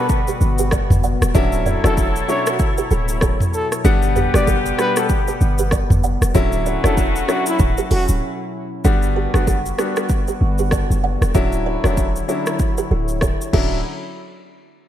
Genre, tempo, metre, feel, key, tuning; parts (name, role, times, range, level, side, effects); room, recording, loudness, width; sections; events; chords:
afrobeats; 96 BPM; 4/4; swing 58% on 16ths; D major; A4 = 440 Hz
breathy trumpet; melody; 0.0-8.1 s; E4 to D5; -25 LUFS; equal; ping-pong delay
clear horn section; second line; 0.0-8.5 s; C#3 to B4; -28 LUFS; left 4 dB
clear baby grand piano; accompaniment; 0.0-13.8 s; D3 to F#5; -23 LUFS; left 3 dB
warm analog pad; sustained chords; 0.0-13.8 s; B2 to F#5; -26 LUFS; left 2 dB; chorus, sidechain pumping
kalimba; riff; 0.0-13.6 s; F#4 to F#5; -27 LUFS; right 7 dB; ping-pong delay
deep house drum kit; drums; 0.1-13.7 s; crash cymbal, hi-hat, kick drum, rim click, shaker, toms; -20 LUFS; equal; overdrive
warm 808-style bass; bass; 0.4-13.8 s; D1 to G1; -19 LUFS; equal
light reverb, small room ambience; -16 LUFS; side -11 dB against mid
0.0-8.8 A section; 8.8-13.8 B section; 13.8-14.9 C section
break 8.2-8.8
0.0 Gmaj7; 1.3 Dmaj9; 3.8 Gmaj7; 6.3 Dmaj9; 8.8 Gmaj7; 11.3 Dmaj9; 13.8 N.C.